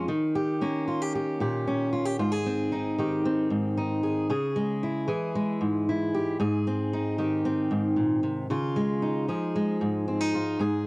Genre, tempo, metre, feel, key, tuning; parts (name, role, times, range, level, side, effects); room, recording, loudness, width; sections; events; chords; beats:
folk; 114 BPM; 4/4; straight; Ab major; A4 = 440 Hz
fingerpicked steel-string acoustic guitar; solo; 0.0-10.9 s; Ab2 to Ab4; -25 LUFS; equal; cassette tape
light reverb, small room ambience; home recording on cassette; -25 LUFS; side -25 dB against mid
0.0-2.2 A section; 2.2-10.9 B section
0.1 Eb7; 2.2 Ab; 4.3 Dbm; 6.4 Abadd9; 8.5 Dbadd9
| 0.08 0.61 1.13 1.66 | 2.19 2.71 3.24 3.77 | 4.29 4.82 5.34 5.87 | 6.39 6.92 7.44 7.97 | 8.49 9.02 9.54 10.06 | 10.59